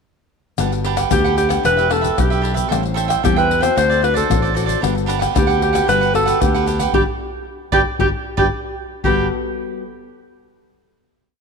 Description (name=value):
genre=samba and choro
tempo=114 BPM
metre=4/4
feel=straight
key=G major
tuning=A4 = 440 Hz
part: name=cavaquinho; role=accompaniment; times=0.6-9.3 s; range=D4 to G5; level=-22 LUFS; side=right 11 dB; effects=none
part: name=nylon-string guitar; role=accompaniment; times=0.6-9.8 s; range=A2 to A4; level=-24 LUFS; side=left 9 dB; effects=none
part: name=fingered electric bass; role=bass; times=0.6-9.3 s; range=E1 to E2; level=-22 LUFS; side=right 1 dB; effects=none
part: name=tube shaker, surdo, pandeiro and tamborim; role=percussion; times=0.6-9.2 s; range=none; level=-22 LUFS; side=left 3 dB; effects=none
part: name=breathy alto saxophone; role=melody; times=1.1-9.3 s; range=G4 to C5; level=-19 LUFS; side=equal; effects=none
room=moderate echo chamber reverb, RT60 2.1 s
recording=1960s-style stereo with parts hard left and right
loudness=-15 LUFS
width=side -5 dB against mid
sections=0.6-9.1 A section; 9.1-11.2 final chord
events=band accent 6.9-9.1; drum fill 8.0-9.1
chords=0.6 Gmaj9; 1.6 Em7; 2.7 Am7; 3.8 D7; 4.8 Gmaj9